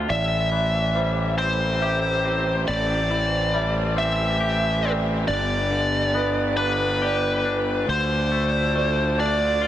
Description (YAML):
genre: post-rock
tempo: 46 BPM (dotted quarters)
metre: 6/8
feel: straight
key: A minor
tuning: A4 = 440 Hz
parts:
  - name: felt-muted upright piano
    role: arpeggios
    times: 0.0-9.7 s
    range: B4 to E5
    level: -33 LUFS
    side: right 8 dB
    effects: digital delay
  - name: twangy electric guitar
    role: arpeggios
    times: 0.0-9.7 s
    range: G2 to G4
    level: -29 LUFS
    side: left 4 dB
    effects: analog chorus, digital delay
  - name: fuzz fingered electric bass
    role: bass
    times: 0.0-9.7 s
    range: G1 to D2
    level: -25 LUFS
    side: equal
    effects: overdrive
  - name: bluesy overdriven lead guitar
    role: melody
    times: 0.1-9.7 s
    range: B4 to E5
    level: -23 LUFS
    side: equal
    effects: distortion, digital delay
  - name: rich studio string section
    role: sustained chords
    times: 0.1-9.7 s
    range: D3 to D5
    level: -33 LUFS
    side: right 1 dB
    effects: none
room: light reverb, small room ambience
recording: none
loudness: -20 LUFS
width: side -12 dB against mid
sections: 0.1-9.7 A section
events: none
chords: 0.1 Am7; 5.3 G; 7.9 Dm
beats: | 0.09 1.38 | 2.68 3.98 | 5.28 6.58 | 7.88 9.18